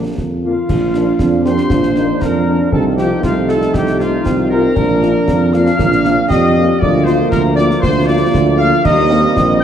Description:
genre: military-style march for wind band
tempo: 118 BPM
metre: 2/4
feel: straight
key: Bb major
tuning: A4 = 435 Hz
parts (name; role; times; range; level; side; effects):
- clear euphonium; second line; 0.0-9.6 s; A3 to G4; -20 LUFS; right 2 dB; none
- dark woodwind section; second line; 0.0-9.6 s; D4 to F5; -21 LUFS; equal; none
- dark French horn section; accompaniment; 0.0-9.2 s; D3 to G4; -22 LUFS; left 3 dB; none
- warm tuba; bass; 0.0-9.6 s; Bb1 to F2; -16 LUFS; right 2 dB; none
- concert snare drum, concert bass drum and clash cymbals; drums; 0.2-9.6 s; none; -21 LUFS; left 1 dB; none
- bright trumpet section; melody; 0.4-9.6 s; D4 to G5; -23 LUFS; left 1 dB; none
- bright wooden piccolo; second line; 0.4-9.6 s; F5 to G6; -22 LUFS; left 2 dB; none
- warm trombone section; sustained chords; 0.7-9.6 s; F3 to Eb4; -21 LUFS; right 1 dB; none
room: wet concert hall reverb, RT60 2.4 s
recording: dark, warm production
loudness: -11 LUFS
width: side -9 dB against mid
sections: 0.7-9.6 A section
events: none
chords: 0.0 Bb; 2.7 F7/C; 4.8 Bb; 6.8 Bb/D; 8.8 Eb

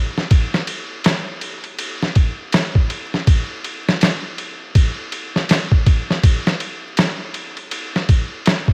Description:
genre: trip hop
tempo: 81 BPM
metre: 4/4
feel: swing 60% on 16ths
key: none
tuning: none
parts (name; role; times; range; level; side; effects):
- boom bap sampler-style drum kit; drums; 0.2-8.7 s; kick drum, ride cymbal, snare drum; -19 LUFS; equal; small room ambience, cassette tape
room: little or no reverb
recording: home recording on cassette, vinyl crackle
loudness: -19 LUFS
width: mono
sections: 0.0-8.7 A section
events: none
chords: none

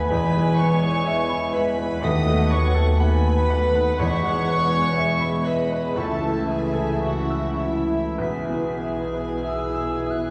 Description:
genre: classical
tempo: 47-63 BPM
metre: 4/4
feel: rubato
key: E major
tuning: A4 = 440 Hz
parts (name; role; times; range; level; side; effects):
- clear grand piano; melody; 0.0-10.3 s; B1 to E6; -29 LUFS; equal; none
- rich studio violin section; melody; 0.0-10.3 s; E5 to D#6; -37 LUFS; equal; none
- dark cor anglais; second line; 0.0-10.3 s; E4 to D#5; -34 LUFS; equal; none
- dark studio violin section; second line; 0.0-10.3 s; B4 to G#5; -36 LUFS; equal; none
- mellow clarinet; second line; 0.0-10.3 s; E4 to D#5; -34 LUFS; equal; none
- dark chamber viola section; accompaniment; 0.0-10.3 s; E3 to E4; -34 LUFS; equal; none
- dark French horn section; sustained chords; 0.0-10.3 s; B3 to B4; -34 LUFS; equal; none
- warm trombone section; sustained chords; 0.0-10.3 s; E3 to B3; -33 LUFS; equal; none
- mellow trumpet; stabs; 0.0-10.3 s; E4 to D#5; -33 LUFS; equal; none
- dark studio double bass section; bass; 0.0-10.3 s; E1 to D#2; -29 LUFS; equal; none
- warm studio cello section; bass; 0.0-10.3 s; D#2 to C#3; -33 LUFS; equal; none
- silver concert flute; second line; 0.1-10.3 s; C#6 to B6; -41 LUFS; equal; none
- mellow bassoon; accompaniment; 0.1-8.7 s; E3 to A3; -37 LUFS; equal; none
- timpani; percussion; 0.1-5.4 s; E2; -33 LUFS; equal; none
room: wet concert hall reverb, RT60 1.9 s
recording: heard from further back in the room, small room ambience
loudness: -22 LUFS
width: mono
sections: 0.0-10.3 A section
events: none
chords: 0.1 E; 2.0 B7/D#; 4.0 E; 6.0 A/C#; 8.2 E/B

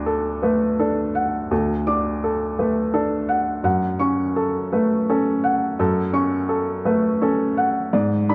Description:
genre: neoclassical minimalist piano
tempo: 56 BPM (dotted quarters)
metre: 6/8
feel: rubato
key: F# minor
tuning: A4 = 440 Hz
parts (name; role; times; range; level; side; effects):
- warm upright piano; solo; 0.0-8.3 s; D2 to D6; -21 LUFS; equal; none
room: light reverb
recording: dark, warm production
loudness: -21 LUFS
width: mono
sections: 0.0-8.3 A section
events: none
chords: 0.0 D; 3.6 F#m

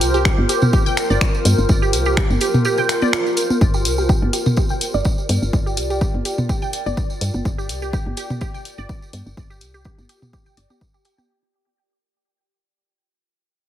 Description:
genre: minimal techno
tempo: 125 BPM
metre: 4/4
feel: swing 54% on 16ths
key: G minor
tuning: A4 = 439 Hz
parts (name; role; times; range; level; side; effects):
- woody FM bass; bass; 0.0-10.7 s; G1 to G2; -21 LUFS; equal; sidechain pumping
- punchy analog drum machine; drums; 0.0-11.2 s; finger snaps, hi-hat; -23 LUFS; left 2 dB; none
- tambourine; percussion; 0.0-11.3 s; none; -30 LUFS; right 2 dB; none
- granular cloud pad; texture; 0.0-11.3 s; F4 to D5; -24 LUFS; equal; built-in reverb, sidechain pumping
- resonant blip pluck; riff; 0.1-11.2 s; G4 to G5; -25 LUFS; right 2 dB; phaser, vintage 12-bit sampler grit, sidechain pumping, tape echo
- electronic kick drum; drums; 0.3-10.9 s; none; -19 LUFS; equal; none
- electronic toms; percussion; 0.4-11.3 s; none; -22 LUFS; equal; digital delay
room: moderate digital room reverb, RT60 1.2 s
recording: heavily compressed radio sound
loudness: -16 LUFS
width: side -11 dB against mid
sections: 0.0-3.6 A section; 3.6-11.3 B section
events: drop 0.0-3.6; fade-out on ambient pad 3.6-11.3; fade-out 3.6-11.3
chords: 0.0 Gm

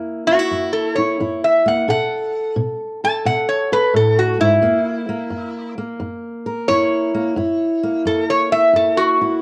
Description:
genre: acoustic country blues, solo or duo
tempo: 87 BPM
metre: 4/4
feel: swing 67% on 8ths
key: F# mixolydian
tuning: A4 = 440 Hz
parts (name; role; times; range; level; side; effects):
- fingerpicked steel-string acoustic guitar; accompaniment; 0.0-9.4 s; F#2 to A#4; -23 LUFS; equal; cassette tape, plate reverb
- metal-body resonator slide guitar; melody; 0.3-9.4 s; E4 to A5; -19 LUFS; equal; plate reverb
room: wet small room reverb, RT60 0.5 s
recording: home recording on cassette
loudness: -18 LUFS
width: mono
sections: 0.0-9.4 A section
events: resonator guitar played with a steel bar solo 0.0-9.4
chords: 0.0 F#7; 1.9 B5; 4.6 F#7

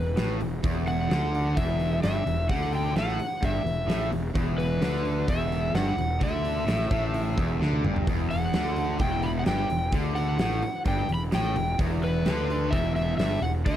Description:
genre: blues rock power trio and southern rock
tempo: 129 BPM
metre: 4/4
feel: straight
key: E minor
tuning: A4 = 440 Hz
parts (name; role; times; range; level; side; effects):
- overdriven slide guitar; melody; 0.0-13.8 s; B4 to B5; -31 LUFS; left 1 dB; none
- crunchy overdriven guitar; riff; 0.0-13.8 s; E2 to D3; -29 LUFS; equal; none
- fuzz fingered electric bass; bass; 0.0-13.8 s; E1 to D2; -30 LUFS; equal; overdrive
- huge arena drum kit; drums; 0.2-13.8 s; hi-hat, kick drum, snare drum, toms; -30 LUFS; equal; none
room: light reverb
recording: none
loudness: -24 LUFS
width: side -11 dB against mid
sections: 0.0-13.8 A section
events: drum fill 7.6-8.1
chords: 0.0 Em

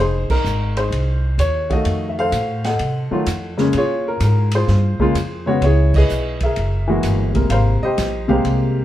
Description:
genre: jazz piano trio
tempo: 128 BPM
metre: 4/4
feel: swing 68% on 8ths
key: F minor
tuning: A4 = 440 Hz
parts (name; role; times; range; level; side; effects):
- warm grand piano; melody; 0.0-8.8 s; C3 to Gb5; -19 LUFS; left 1 dB; plate reverb
- upright bass; bass; 0.0-8.8 s; F1 to C3; -19 LUFS; equal; none
- open jazz drum kit; drums; 0.3-8.6 s; crash cymbal, hi-hat, kick drum, ride cymbal, snare drum; -26 LUFS; right 1 dB; none
room: moderate studio reverb, RT60 0.6 s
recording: heard from further back in the room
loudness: -16 LUFS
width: side -13 dB against mid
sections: 0.0-8.8 A section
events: band accent 0.2, 5.9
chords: 0.0 Fm7; 1.9 F7b9; 3.7 Bbm7; 5.6 Dbm7; 6.6 Gb9; 7.5 Abmaj9

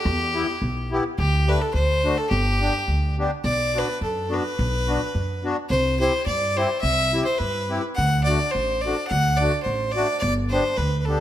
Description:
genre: alpine folk, alpine dance band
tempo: 106 BPM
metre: 2/4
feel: swing 54% on 8ths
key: unclear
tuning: A4 = 440 Hz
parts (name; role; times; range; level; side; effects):
- clear fiddle; melody; 0.0-11.2 s; G4 to F#5; -23 LUFS; equal; none
- upright bass; bass; 0.1-11.1 s; G1 to G2; -24 LUFS; equal; none
- accordion; accompaniment; 0.3-11.2 s; A3 to G4; -28 LUFS; left 2 dB; light tremolo tuning
room: light reverb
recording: none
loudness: -20 LUFS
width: side -12 dB against mid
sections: 0.0-3.5 A section; 3.5-11.2 B section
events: none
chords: 0.1 Em; 1.2 Dsus4; 1.7 D7; 2.3 G; 3.5 Bm; 5.7 C; 8.0 D; 10.2 G

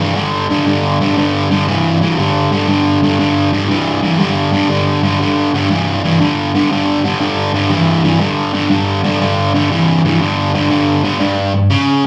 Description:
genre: rock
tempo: 120 BPM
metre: 4/4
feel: swing 67% on 8ths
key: unclear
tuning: A4 = 440 Hz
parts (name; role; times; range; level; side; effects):
- fuzz guitar; solo; 0.0-12.1 s; G2 to E3; -14 LUFS; equal; distortion, slapback echo
room: moderate club reverb, RT60 0.6 s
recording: live gig heard through the venue's PA, club reverb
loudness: -14 LUFS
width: mono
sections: 0.0-11.2 A section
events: none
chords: 0.0 G5; 11.2 N.C.

